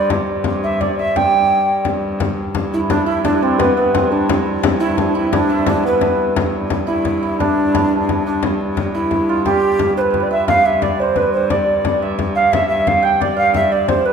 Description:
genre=medieval dance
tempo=116 BPM (dotted quarters)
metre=6/8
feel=straight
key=G mixolydian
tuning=A4 = 440 Hz
part: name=mellow hollow tenor recorder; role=melody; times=0.0-14.1 s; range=C4 to G5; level=-17 LUFS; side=right 1 dB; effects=none
part: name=hammered dulcimer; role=second line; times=0.0-14.1 s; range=B3 to G5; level=-21 LUFS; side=right 5 dB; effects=none
part: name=rich hurdy-gurdy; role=drone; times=0.0-14.1 s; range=G2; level=-24 LUFS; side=left 1 dB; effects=none
part: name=frame drum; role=percussion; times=0.1-14.0 s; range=none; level=-21 LUFS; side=left 4 dB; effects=none
room=wet recital hall reverb, RT60 1.4 s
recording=minimal, uncompressed stereo recording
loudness=-14 LUFS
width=side -6 dB against mid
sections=0.0-2.2 A section; 2.2-10.5 A section; 10.5-14.1 B section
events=speeding up 0.0-14.1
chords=none

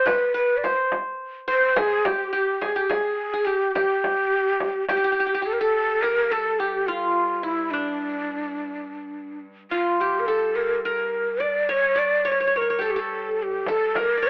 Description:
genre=Turkish makam ensemble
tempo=212 BPM (eighths)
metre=7/8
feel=straight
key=G makam hicaz, G makam nikriz from 5.7 s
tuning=A4 = 438 Hz
part: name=breathy mellow ney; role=melody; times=0.0-14.3 s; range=D4 to D5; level=-25 LUFS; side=equal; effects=none
part: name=qanun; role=second line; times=0.0-14.3 s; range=D4 to D5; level=-29 LUFS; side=equal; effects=none
part: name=frame drum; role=percussion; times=0.1-5.0, 13.7-14.1 s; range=none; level=-31 LUFS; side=equal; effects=none
part: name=muted cello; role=drone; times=5.8-14.3 s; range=G2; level=-49 LUFS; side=equal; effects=none
room=light reverb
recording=telephone sound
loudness=-23 LUFS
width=mono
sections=0.0-5.7 A section; 5.7-14.3 B section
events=none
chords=none

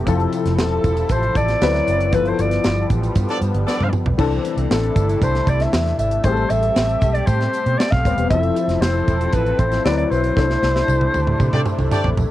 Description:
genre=polished 1980s jazz-funk pop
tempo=116 BPM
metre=4/4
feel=straight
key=C major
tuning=A4 = 441 Hz
part: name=warm concert grand piano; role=accompaniment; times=0.0-12.3 s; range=E3 to C5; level=-24 LUFS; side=left 6 dB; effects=ensemble chorus, cassette tape, plate reverb
part: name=lush unison pad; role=sustained chords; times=0.0-12.3 s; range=C3 to A4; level=-27 LUFS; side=right 1 dB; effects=chorus, phaser, cassette tape
part: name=vintage muted fingered electric bass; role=bass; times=0.0-12.3 s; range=Eb1 to C3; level=-21 LUFS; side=right 1 dB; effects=none
part: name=tight funk drum kit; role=drums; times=0.1-12.3 s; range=crash cymbal, hi-hat, kick drum, snare drum, toms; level=-21 LUFS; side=right 1 dB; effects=cassette tape
part: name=tambourine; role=percussion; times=0.1-12.3 s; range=none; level=-45 LUFS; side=right 15 dB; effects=none
part: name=mellow alto saxophone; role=melody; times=0.6-11.9 s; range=A4 to F5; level=-22 LUFS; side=left 1 dB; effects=cassette tape
part: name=warm horn section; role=second line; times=3.3-3.9, 11.5-12.1 s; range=A3 to D5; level=-23 LUFS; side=equal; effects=cassette tape
room=light reverb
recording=home recording on cassette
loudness=-16 LUFS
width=side -14 dB against mid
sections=0.0-12.3 A section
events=band accent 2.1-4.2, 10.4-12.3; drum fill 3.7-4.2, 10.4-12.3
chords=0.1 Fmaj7; 1.6 D13; 2.1 G13; 4.2 C69; 6.2 Am9; 8.3 Fmaj7; 9.9 D13; 10.4 C69

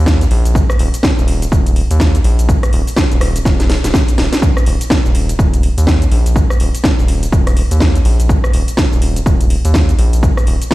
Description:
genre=deep house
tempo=124 BPM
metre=4/4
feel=swing 60% on 16ths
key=unclear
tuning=A4 = 441 Hz
part: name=round analog bass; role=bass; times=0.0-10.6 s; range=Eb1 to Eb2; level=-14 LUFS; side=equal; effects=sidechain pumping
part: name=electronic kick drum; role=drums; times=0.1-10.7 s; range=none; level=-13 LUFS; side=equal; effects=overdrive
part: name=house drum kit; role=drums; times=0.1-10.7 s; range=hi-hat, rim click, shaker, snare drum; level=-19 LUFS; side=equal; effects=overdrive
room=little or no reverb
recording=played on a big sound system in a bare room, large studio reverb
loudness=-11 LUFS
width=side -18 dB against mid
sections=0.0-10.7 A section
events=drum fill 3.5-4.4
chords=none

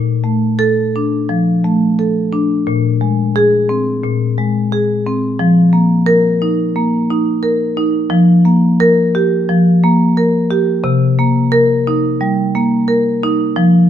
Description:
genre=classical, contemporary piece for solo marimba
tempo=88 BPM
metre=4/4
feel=rubato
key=unclear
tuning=A4 = 440 Hz
part: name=marimba with medium mallets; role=solo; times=0.0-13.9 s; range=Bb2 to Bb4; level=-11 LUFS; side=equal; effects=none
room=light reverb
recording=none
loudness=-11 LUFS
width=side -10 dB against mid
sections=0.0-13.9 A section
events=none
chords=0.0 Bbmaj7; 2.7 Abadd9/Bb; 5.4 F7sus4; 8.1 Gm7/F; 10.8 Cm7

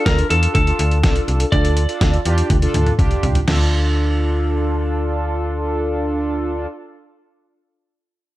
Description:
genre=synth-pop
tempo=123 BPM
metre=4/4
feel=straight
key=D minor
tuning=A4 = 440 Hz
part: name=lightly driven lead guitar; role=melody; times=0.0-2.9 s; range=A4 to D5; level=-22 LUFS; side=equal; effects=digital delay
part: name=analog synth brass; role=accompaniment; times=0.0-6.7 s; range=D4 to A4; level=-22 LUFS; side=right 1 dB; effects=chorus
part: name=slap-like FM bass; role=bass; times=0.1-6.7 s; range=C2 to E2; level=-19 LUFS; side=equal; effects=none
part: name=lo-fi sampler-style drum kit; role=drums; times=0.1-3.6 s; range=crash cymbal, hi-hat, kick drum, snare drum, toms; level=-19 LUFS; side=equal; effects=overdrive
room=light reverb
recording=none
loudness=-16 LUFS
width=side -16 dB against mid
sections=0.0-3.5 A section; 3.5-7.4 B section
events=drum fill 2.5-3.5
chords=0.0 Dm

